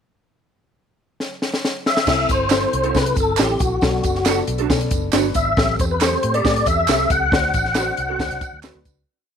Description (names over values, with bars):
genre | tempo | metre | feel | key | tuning
uptempo 1960s-style soul | 137 BPM | 4/4 | straight | unclear | A4 = 444 Hz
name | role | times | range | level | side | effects
compact cocktail drum kit | drums | 1.2-9.0 s | crash cymbal, hi-hat, kick drum, snare drum | -21 LUFS | equal | none
mellow tonewheel organ | melody | 1.9-8.6 s | F#4 to F#5 | -20 LUFS | left 1 dB | chorus vibrato, fast rotary speaker
dark upright piano | accompaniment | 2.1-9.0 s | B3 to C5 | -27 LUFS | left 12 dB | none
vintage muted fingered electric bass | bass | 2.1-9.0 s | F#1 to C3 | -25 LUFS | right 1 dB | none
tambourine and handclaps | percussion | 2.1-9.0 s | none | -30 LUFS | right 14 dB | none
electric guitar through a small old amp | stabs | 2.5-8.8 s | C4 to A4 | -25 LUFS | right 14 dB | ensemble chorus
room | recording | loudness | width
light reverb | 1960s-style stereo with parts hard left and right | -16 LUFS | side -7 dB against mid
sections
0.3-2.1 pickup bar; 2.1-9.1 pre-chorus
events
drum fill 1.2-2.1; fade-out 7.3-9.1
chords
0.3 N.C.; 2.1 C6; 3.8 Bm7; 5.6 Am7; 7.3 D7